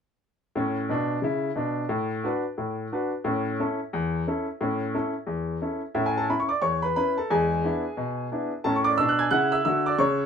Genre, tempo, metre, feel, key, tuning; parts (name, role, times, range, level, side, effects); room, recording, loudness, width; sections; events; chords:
jazz, stride piano; 178 BPM; 4/4; swing 63% on 8ths; A major; A4 = 440 Hz
bright grand piano; solo; 0.6-10.3 s; E2 to G#6; -24 LUFS; equal
moderate studio reverb, RT60 0.5 s; minimal, uncompressed stereo recording; -24 LUFS; side -7 dB against mid
0.5-5.9 A section; 5.9-10.3 B section
0.5 A; 1.9 Bm7/A; 3.2 A; 7.3 E7; 8.7 A